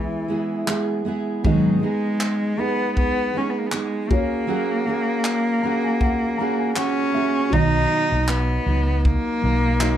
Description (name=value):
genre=acoustic pop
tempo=79 BPM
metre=4/4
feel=swing 55% on 16ths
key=B major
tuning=A4 = 440 Hz
part: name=warm cello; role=melody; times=0.0-10.0 s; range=E3 to D#4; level=-22 LUFS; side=left 1 dB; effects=none
part: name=dark upright piano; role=accompaniment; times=0.0-10.0 s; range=F#3 to A#5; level=-32 LUFS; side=left 5 dB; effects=none
part: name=fingerpicked steel-string acoustic guitar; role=accompaniment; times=0.0-10.0 s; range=G#2 to B4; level=-24 LUFS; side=right 4 dB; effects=none
part: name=natural country drum kit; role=drums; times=0.7-10.0 s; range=handclaps, kick drum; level=-24 LUFS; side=equal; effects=none
part: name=vintage muted fingered electric bass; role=bass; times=7.5-10.0 s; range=B1 to C#2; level=-21 LUFS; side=equal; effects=none
room=light reverb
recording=none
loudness=-19 LUFS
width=side -10 dB against mid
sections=0.0-7.5 A section; 7.5-10.0 B section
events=upright piano fill 5.3-7.5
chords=0.0 E; 1.4 G#m; 4.1 F#add9; 7.5 B